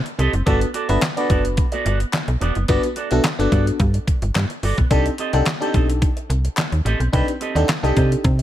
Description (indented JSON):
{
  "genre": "early-eighties boogie funk",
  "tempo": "108 BPM",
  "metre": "4/4",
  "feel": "straight",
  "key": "G major",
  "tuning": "A4 = 440 Hz",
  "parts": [
    { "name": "electric guitar with an envelope filter", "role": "riff", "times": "0.1-8.4 s", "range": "B3 to F#5", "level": "-26 LUFS", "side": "right 4 dB", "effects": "lush chorus" },
    { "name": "detuned 8-bit digital drum machine", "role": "drums", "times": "0.1-8.4 s", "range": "handclaps, hi-hat, kick drum, snare drum", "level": "-21 LUFS", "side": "equal", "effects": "none" },
    { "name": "slap-like FM bass", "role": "bass", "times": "0.2-8.4 s", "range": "E1 to C3", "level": "-19 LUFS", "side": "equal", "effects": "none" },
    { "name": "FM electric piano", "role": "accompaniment", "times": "0.5-8.3 s", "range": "B3 to B4", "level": "-22 LUFS", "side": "left 2 dB", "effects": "chorus, phaser" },
    { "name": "group handclap", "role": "percussion", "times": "1.0-7.8 s", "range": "none", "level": "-32 LUFS", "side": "left 4 dB", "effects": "none" }
  ],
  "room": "little or no reverb",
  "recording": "none",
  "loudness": "-17 LUFS",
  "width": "side -12 dB against mid",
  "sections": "0.0-8.4 A section",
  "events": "none",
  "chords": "0.5 Gmaj9; 4.9 Cm6"
}